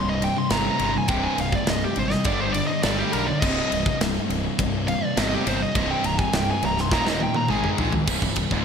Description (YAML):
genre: heavy metal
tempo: 103 BPM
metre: 4/4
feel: straight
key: C minor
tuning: A4 = 440 Hz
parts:
  - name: high-gain lead guitar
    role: melody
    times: 0.0-7.7 s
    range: G4 to C6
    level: -27 LUFS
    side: equal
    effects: distortion
  - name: distorted electric guitar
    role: riff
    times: 0.0-8.6 s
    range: C2 to Ab3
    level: -29 LUFS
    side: right 9 dB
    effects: overdrive
  - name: fuzz guitar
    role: riff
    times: 0.0-8.6 s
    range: C2 to Ab3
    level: -29 LUFS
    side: equal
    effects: distortion
  - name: sludgy distorted guitar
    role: riff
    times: 0.0-8.6 s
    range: C2 to Ab3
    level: -29 LUFS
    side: left 10 dB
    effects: overdrive
  - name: fuzz fingered electric bass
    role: bass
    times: 0.0-8.6 s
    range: C1 to B1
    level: -29 LUFS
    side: equal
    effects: overdrive
  - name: tight metal drum kit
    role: drums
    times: 0.2-8.6 s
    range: crash cymbal, kick drum, ride cymbal, snare drum, toms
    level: -26 LUFS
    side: equal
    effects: gated reverb
room: moderate lush hall reverb, RT60 2.3 s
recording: bright 1980s-style digital production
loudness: -20 LUFS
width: side -7 dB against mid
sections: 0.0-8.1 A section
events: lead electric guitar solo 0.0-8.1; drum fill 6.9-8.1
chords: 0.0 C5; 2.3 G5; 3.4 Cm; 6.9 Eb5; 7.5 Ab5; 8.1 C5